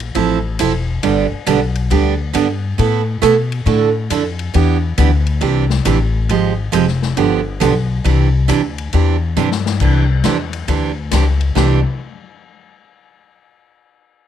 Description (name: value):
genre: country, western swing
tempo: 137 BPM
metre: 4/4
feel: swing 65% on 8ths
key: C major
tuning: A4 = 440 Hz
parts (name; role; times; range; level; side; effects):
- upright bass; bass; 0.0-11.8 s; E1 to B2; -16 LUFS; left 2 dB; none
- swinging big-band drum kit; drums; 0.0-11.7 s; crash cymbal, hi-hat, kick drum, ride cymbal, snare drum, toms; -26 LUFS; left 10 dB; none
- picked steel-string acoustic guitar; accompaniment; 0.1-11.8 s; C3 to A4; -16 LUFS; right 8 dB; none
room: light reverb, small room reverb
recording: 1960s-style stereo with parts hard left and right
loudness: -13 LUFS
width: side -10 dB against mid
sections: 0.0-9.8 A section; 9.8-11.6 B section; 11.6-13.3 C section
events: drum fill 9.4-9.8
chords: 0.2 Fmaj7; 1.0 G; 2.8 Asus2; 3.7 Dsus2; 4.5 Em7; 5.4 Cadd9; 6.3 Fmadd9; 7.2 G7; 8.0 Cadd9